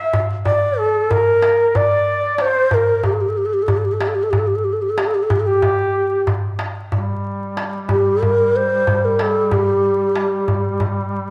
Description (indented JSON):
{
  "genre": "Turkish makam ensemble",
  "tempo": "93 BPM",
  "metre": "4/4",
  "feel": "straight",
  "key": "G makam huseyni",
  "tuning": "A4 = 440 Hz",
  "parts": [
    { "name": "breathy mellow low ney", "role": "melody", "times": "0.0-10.8 s", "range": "G4 to E5-35c", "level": "-19 LUFS", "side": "equal", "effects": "slapback echo" },
    { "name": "warm flugelhorn", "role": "second line", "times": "0.0-6.2 s", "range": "G4 to E5-28c", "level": "-26 LUFS", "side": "equal", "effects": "none" },
    { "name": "darbuka", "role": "percussion", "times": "0.1-11.0 s", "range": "none", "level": "-24 LUFS", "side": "equal", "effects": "none" },
    { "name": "warm duduk", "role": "drone", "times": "6.9-11.3 s", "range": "G3", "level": "-27 LUFS", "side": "equal", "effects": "none" }
  ],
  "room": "moderate echo chamber reverb, RT60 1.6 s, small room ambience",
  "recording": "vinyl crackle",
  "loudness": "-18 LUFS",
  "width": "mono",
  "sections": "0.0-6.9 A section; 6.9-11.3 B section",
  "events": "none",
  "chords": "none"
}